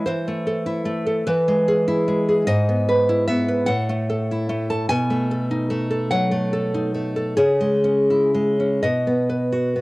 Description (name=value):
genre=romantic piece for solo classical guitar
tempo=49 BPM (dotted quarters)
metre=6/8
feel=uneven beats, rubato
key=E major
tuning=A4 = 441 Hz
part: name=nylon-string guitar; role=solo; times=0.0-9.8 s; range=G#2 to A5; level=-18 LUFS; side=equal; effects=cassette tape
room=light reverb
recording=home recording on cassette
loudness=-18 LUFS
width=side -21 dB against mid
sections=0.0-9.8 A section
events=none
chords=0.1 Am/E; 1.3 E; 2.5 E/G#; 3.7 F#m7/A; 4.9 B7; 7.4 C#m; 8.8 B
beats=| 0.07 1.26 | 2.47 3.68 | 4.89 6.10 | 7.38 8.83